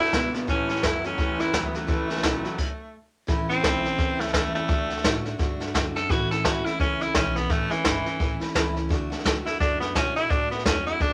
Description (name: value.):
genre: rockabilly.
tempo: 171 BPM.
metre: 4/4.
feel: swing 60% on 8ths.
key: A major.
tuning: A4 = 440 Hz.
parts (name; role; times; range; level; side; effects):
raspy tenor saxophone; melody; 0.0-11.1 s; E3 to A4; -29 LUFS; equal; none.
picked steel-string acoustic guitar; accompaniment; 0.0-11.1 s; A2 to F#4; -33 LUFS; equal; none.
electric guitar through a small old amp; riff; 0.0-2.6 s; A2 to B3; -32 LUFS; equal; none.
upright bass; bass; 0.0-11.1 s; G1 to B2; -38 LUFS; equal; none.
jazz brush drum kit; drums; 0.1-11.1 s; crash cymbal, hi-hat, kick drum, snare drum; -28 LUFS; equal; none.
room: moderate small room reverb, RT60 0.5 s.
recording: none.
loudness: -25 LUFS.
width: mono.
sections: 0.0-3.3 A section; 3.3-11.1 B section.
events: stop 2.6-3.3; tenor saxophone solo 3.3-11.1.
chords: 0.5 A; 4.7 D; 6.1 A; 8.9 D.